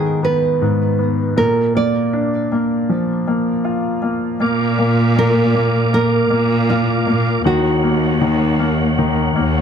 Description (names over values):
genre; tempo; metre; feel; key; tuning
pop; 79 BPM; 4/4; straight; unclear; A4 = 440 Hz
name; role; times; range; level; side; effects
nylon-string guitar; melody; 0.0-8.2 s; F4 to D5; -20 LUFS; right 3 dB; none
clear concert grand piano; accompaniment; 0.0-9.6 s; Ab2 to F4; -17 LUFS; left 2 dB; none
tonewheel organ; sustained chords; 4.4-9.6 s; Bb4 to D6; -22 LUFS; right 2 dB; chorus vibrato, stopped rotary speaker
clear studio cello section; bass; 4.4-9.6 s; Eb2 to Bb2; -18 LUFS; right 1 dB; none
room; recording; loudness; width
light reverb, small room reverb; none; -14 LUFS; side -7 dB against mid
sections
0.0-4.4 A section; 4.4-9.6 B section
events
none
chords
0.0 Abm; 1.4 Bb; 7.5 Ebm7